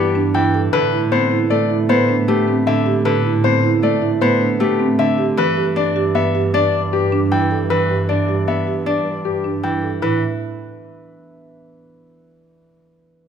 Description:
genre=classical, minimalist pattern music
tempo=155 BPM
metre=6/4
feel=straight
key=A minor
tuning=A4 = 439 Hz
part: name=clear concert grand piano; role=melody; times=0.0-10.2 s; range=G4 to G5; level=-20 LUFS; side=left 7 dB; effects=none
part: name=Celtic harp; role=accompaniment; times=0.0-12.4 s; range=D3 to D4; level=-21 LUFS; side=equal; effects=none
part: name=marimba with soft mallets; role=arpeggios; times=0.0-10.2 s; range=C4 to D5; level=-20 LUFS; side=right 6 dB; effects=none
part: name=rich studio double bass section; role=bass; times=0.0-10.2 s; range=G2 to A2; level=-23 LUFS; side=right 2 dB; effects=none
room=moderate recital hall reverb, RT60 1.8 s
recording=none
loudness=-15 LUFS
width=side -7 dB against mid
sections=0.0-10.0 A section; 10.0-12.3 B section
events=none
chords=0.0 Em7/G; 0.7 Amadd9; 5.4 Em7/G; 10.0 Asus2 (rootless)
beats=0.34 | 0.73 1.12 1.51 1.89 2.28 2.67 | 3.06 3.44 3.83 4.22 4.60 4.99 | 5.38 5.76 6.15 6.54 6.93 7.31 | 7.70 8.09 8.47 8.86 9.25 9.64 | 10.02 10.41 10.80 11.18 11.57 11.96

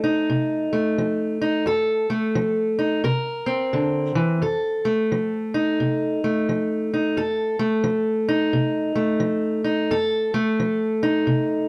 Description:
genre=blues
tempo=87 BPM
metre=4/4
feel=swing 62% on 8ths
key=F mixolydian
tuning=A4 = 440 Hz
part: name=fingerpicked steel-string acoustic guitar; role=solo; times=0.0-11.7 s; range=F2 to Bb4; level=-22 LUFS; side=equal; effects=none
room=light reverb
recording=close, detailed microphones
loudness=-22 LUFS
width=mono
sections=0.0-4.4 A section; 4.4-11.7 B section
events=none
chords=0.0 F7; 3.0 C7; 4.4 F7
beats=0.28 0.97 | 1.66 2.34 3.03 3.72 | 4.41 5.10 5.79 6.47 | 7.16 7.85 8.53 9.22 | 9.90 10.59 11.27

